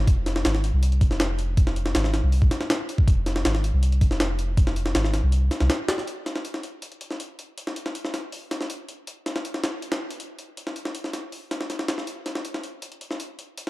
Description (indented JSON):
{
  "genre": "drum and bass, jungle",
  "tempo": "160 BPM",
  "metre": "4/4",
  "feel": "straight",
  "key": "unclear",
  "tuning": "A4 = 440 Hz",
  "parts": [
    { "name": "soft dub sub bass", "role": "bass", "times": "0.0-5.7 s", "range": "F1 to C2", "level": "-22 LUFS", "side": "equal", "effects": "none" },
    { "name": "jungle sampler-style drum kit", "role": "drums", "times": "0.1-13.7 s", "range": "hi-hat, kick drum, snare drum", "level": "-24 LUFS", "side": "equal", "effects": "high-pass filter on snare, high-pass filter on hats, high-pass filter on kick, high-pass filter on room" }
  ],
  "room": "little or no reverb",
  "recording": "dark, warm production",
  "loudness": "-22 LUFS",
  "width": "side -19 dB against mid",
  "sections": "0.0-6.1 A section; 6.1-13.7 B section",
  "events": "drop 0.0-6.1; kick drops out 5.3-6.1",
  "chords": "none"
}